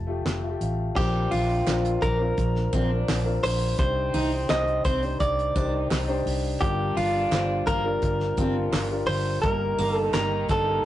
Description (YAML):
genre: piano-driven pop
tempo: 85 BPM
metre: 4/4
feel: straight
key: Bb major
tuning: A4 = 439 Hz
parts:
  - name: warm concert grand piano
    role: accompaniment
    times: 0.0-10.8 s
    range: G2 to A5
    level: -30 LUFS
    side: left 3 dB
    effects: none
  - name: vintage muted fingered electric bass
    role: bass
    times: 0.0-10.8 s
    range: F1 to C2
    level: -28 LUFS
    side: equal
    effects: none
  - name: damped 70s drum kit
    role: drums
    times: 0.3-10.7 s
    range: crash cymbal, handclaps, hi-hat, kick drum, snare drum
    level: -29 LUFS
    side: equal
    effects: none
  - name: direct-recorded clean electric guitar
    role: melody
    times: 1.0-10.8 s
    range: F4 to Eb5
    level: -26 LUFS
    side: right 1 dB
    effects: none
  - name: muted French horn section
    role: second line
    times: 1.0-10.8 s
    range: C3 to F4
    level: -37 LUFS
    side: equal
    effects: none
  - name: picked steel-string acoustic guitar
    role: riff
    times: 1.3-10.7 s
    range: Bb3 to Eb4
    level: -31 LUFS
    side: right 1 dB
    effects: none
  - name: group handclap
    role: percussion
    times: 1.7-10.3 s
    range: none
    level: -39 LUFS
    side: right 4 dB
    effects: none
room: wet studio reverb, RT60 0.7 s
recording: rough rehearsal-room recording, warm saturation, nothing above 10.9 kHz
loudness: -22 LUFS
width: side -13 dB against mid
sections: 1.0-10.8 A section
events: grand piano fill 0.0-1.0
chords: 0.0 Fadd9; 1.0 Bbadd9; 3.8 Cmadd9; 6.6 Gm7; 9.4 Eb/G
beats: 0.26 | 0.96 1.67 2.38 3.08 | 3.79 4.49 5.20 5.91 | 6.61 7.32 8.02 8.73 | 9.44 10.14 10.85